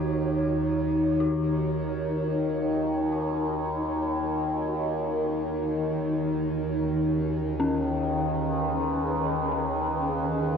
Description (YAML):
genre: dark ambient drone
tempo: free time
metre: none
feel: none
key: Eb minor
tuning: A4 = 441 Hz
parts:
  - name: granular cloud pad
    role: sustained chords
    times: 0.0-10.6 s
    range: Eb3 to Db5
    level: -32 LUFS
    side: right 1 dB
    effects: built-in reverb, shimmer reverb
  - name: dark detuned synth bell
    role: arpeggios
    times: 0.0-10.6 s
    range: Db4 to Gb4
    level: -34 LUFS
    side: left 3 dB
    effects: chorus, ping-pong delay, shimmer reverb
  - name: overtone-sweeping drone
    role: drone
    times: 0.0-10.6 s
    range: Eb2 to Eb3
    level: -26 LUFS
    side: equal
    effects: chorus, built-in reverb
room: wet huge ambient reverb, RT60 8.5 s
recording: worn, warbling old tape, cassette tape, warbly pitch drift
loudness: -24 LUFS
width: side -6 dB against mid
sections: 0.0-10.6 A section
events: none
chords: 0.0 Ebm; 5.0 Abm/Eb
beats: free time